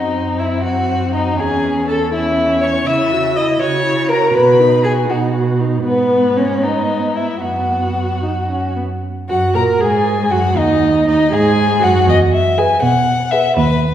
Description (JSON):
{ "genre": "quick classical-period movement for string quartet", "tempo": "80 BPM (dotted quarters)", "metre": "6/8", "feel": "rubato", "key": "unclear", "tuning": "A4 = 440 Hz", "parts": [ { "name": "dark violin", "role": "melody", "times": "0.0-13.9 s", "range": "B4 to E6", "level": "-20 LUFS", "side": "left 3 dB", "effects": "none" }, { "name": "rich violin", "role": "second line", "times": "0.0-13.5 s", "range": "B3 to E5", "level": "-18 LUFS", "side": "left 1 dB", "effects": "none" }, { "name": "rich viola", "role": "accompaniment", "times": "0.0-13.5 s", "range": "B3 to A#4", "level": "-19 LUFS", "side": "right 2 dB", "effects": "none" }, { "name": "warm cello", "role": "bass", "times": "0.0-13.9 s", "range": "D#2 to C#3", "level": "-19 LUFS", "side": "right 2 dB", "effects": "none" } ], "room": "wet concert hall reverb, RT60 1.7 s", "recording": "heard from further back in the room", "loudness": "-13 LUFS", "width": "side -10 dB against mid", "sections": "0.0-9.0 A section; 9.0-13.9 B section", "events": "none", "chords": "0.0 Cdim/Gb; 1.4 C#m/E; 2.9 F#5/C#; 4.4 B; 5.9 G#madd11; 7.4 B5/F#; 8.2 F#5; 9.0 F#add9; 10.6 G#5/D#; 12.1 E" }